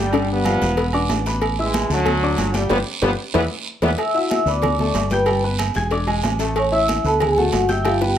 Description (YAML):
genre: latin, salsa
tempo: 187 BPM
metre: 4/4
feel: straight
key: unclear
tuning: A4 = 436 Hz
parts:
  - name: bright trombone section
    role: melody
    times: 0.0-3.9 s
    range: D3 to B3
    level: -23 LUFS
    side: equal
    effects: none
  - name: clear upright piano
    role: accompaniment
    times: 0.0-8.2 s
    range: D3 to G#6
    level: -24 LUFS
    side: left 3 dB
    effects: none
  - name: fingered electric bass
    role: bass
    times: 0.0-8.2 s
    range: E1 to E2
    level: -23 LUFS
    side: right 1 dB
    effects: none
  - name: agogo bells and timbales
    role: percussion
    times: 0.1-8.0 s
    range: none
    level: -27 LUFS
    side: right 10 dB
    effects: none
  - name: congas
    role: percussion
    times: 0.1-8.2 s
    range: none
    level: -28 LUFS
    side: equal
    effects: none
  - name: cowbell and bongos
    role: percussion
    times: 0.1-8.1 s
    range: none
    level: -28 LUFS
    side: left 6 dB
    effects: none
  - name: guiro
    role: percussion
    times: 0.1-8.2 s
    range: none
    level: -32 LUFS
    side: right 6 dB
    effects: none
  - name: vibraphone with soft mallets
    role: melody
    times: 4.0-8.2 s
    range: F4 to E6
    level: -20 LUFS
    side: equal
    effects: none
room: moderate studio reverb, RT60 0.6 s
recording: none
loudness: -17 LUFS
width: side -10 dB against mid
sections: 0.0-4.0 A section; 4.0-8.2 B section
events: drum fill 2.7-4.0, 7.8-8.2; band accent 2.7-4.0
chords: 0.1 G7; 0.8 E5; 1.4 Asus2; 2.1 D; 2.7 G7; 3.3 E7; 4.0 D69; 4.6 D5; 5.3 G; 5.9 E7; 6.6 Aadd9; 7.2 D6